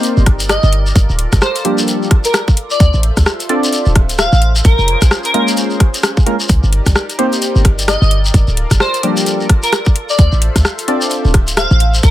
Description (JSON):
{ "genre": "UK garage, two-step garage", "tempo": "130 BPM", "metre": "4/4", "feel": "swing 60% on 16ths", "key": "unclear", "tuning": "A4 = 441 Hz", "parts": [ { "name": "warm analog pad", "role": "sustained chords", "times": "0.0-12.1 s", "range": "Db4 to E5", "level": "-26 LUFS", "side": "equal", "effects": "chorus, sidechain pumping" }, { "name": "percussive organ stab", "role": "stabs", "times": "0.0-11.3 s", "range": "F3 to D5", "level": "-16 LUFS", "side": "equal", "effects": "analog chorus, digital delay" }, { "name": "garage drum kit", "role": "drums", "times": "0.0-12.1 s", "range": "hi-hat, rim click", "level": "-18 LUFS", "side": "left 1 dB", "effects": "none" }, { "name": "shekere", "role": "percussion", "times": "0.0-12.1 s", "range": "none", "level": "-22 LUFS", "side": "left 2 dB", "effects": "none" }, { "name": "short 808-style bass", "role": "bass", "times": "0.2-12.1 s", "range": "D1 to D2", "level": "-12 LUFS", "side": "equal", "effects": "sidechain pumping" }, { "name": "electronic kick drum", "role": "drums", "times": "0.3-12.1 s", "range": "none", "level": "-11 LUFS", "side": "equal", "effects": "none" }, { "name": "airy dreamy lead", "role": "melody", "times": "0.5-12.1 s", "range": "Bb4 to F5", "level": "-18 LUFS", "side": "equal", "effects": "chorus, digital delay" } ], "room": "little or no reverb", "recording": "none", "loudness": "-10 LUFS", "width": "side -14 dB against mid", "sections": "0.0-12.1 A section", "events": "none", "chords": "0.0 Cm7; 1.0 Gm7; 2.8 Dm7; 4.6 Bbm7; 6.5 Cm7; 8.3 Gm7; 10.2 Dm7", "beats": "0.03 0.49 | 0.96 1.42 1.88 2.34 | 2.80 3.26 3.73 4.19 | 4.65 5.11 5.57 6.03 | 6.49 6.96 7.42 7.88 | 8.34 8.80 9.26 9.72 | 10.19 10.65 11.11 11.57 | 12.03" }